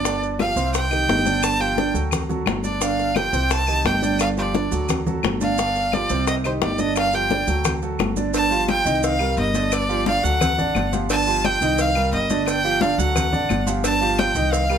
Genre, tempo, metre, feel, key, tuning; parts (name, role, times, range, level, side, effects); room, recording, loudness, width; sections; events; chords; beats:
latin, Cuban son and guajira; 174 BPM; 4/4; straight; A4 = 440 Hz
clear violin; melody; 0.0-14.8 s; C5 to A5; -22 LUFS; right 1 dB; plate reverb
warm grand piano; arpeggios; 0.0-14.8 s; C3 to Eb5; -24 LUFS; right 4 dB
upright bass; bass; 0.0-14.8 s; G1 to D2; -25 LUFS; equal
bongos and cowbell; percussion; 0.1-14.7 s; -28 LUFS; left 8 dB
congas; percussion; 0.1-14.8 s; -27 LUFS; left 4 dB
maracas; percussion; 0.1-14.8 s; -33 LUFS; right 8 dB
claves; percussion; 0.4-14.8 s; -32 LUFS; left 8 dB
moderate studio reverb, RT60 0.6 s; -18 LUFS; side -8 dB against mid
0.0-8.3 A section; 8.3-14.8 B section
0.0 G5; 0.7 Cm; 1.4 G5; 2.1 D; 2.8 G5; 3.5 Cm; 4.2 G5; 4.9 D; 5.6 G5; 6.3 Cm; 7.0 G5; 7.7 D; 8.3 G5; 9.0 Cm7; 9.7 G5; 11.8 Cm7; 12.5 G5
| 0.05 0.40 0.74 1.09 | 1.43 1.78 2.12 2.47 | 2.81 3.16 3.51 3.85 | 4.20 4.54 4.89 5.23 | 5.58 5.92 6.27 6.62 | 6.96 7.31 7.65 8.00 | 8.34 8.69 9.03 9.37 | 9.72 10.06 10.41 10.75 | 11.09 11.44 11.78 12.12 | 12.47 12.81 13.16 13.50 | 13.84 14.19 14.53